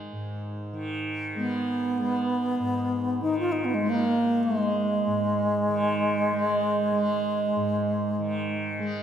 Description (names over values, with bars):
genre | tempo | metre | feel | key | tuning
world meditative, free-time meditation music | free time | none | none | Ab minor | A4 = 440 Hz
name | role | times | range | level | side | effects
tanpura | drone | 0.0-9.0 s | Ab2 to Ab3 | -32 LUFS | equal | none
alto flute | melody | 1.4-8.7 s | Ab3 to F4 | -24 LUFS | equal | diffuse ambient delay
room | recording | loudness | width
wet plate reverb, RT60 2.4 s | dreamy mix soaked in reverb | -24 LUFS | side -9 dB against mid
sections
0.0-9.0 A section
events
none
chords
none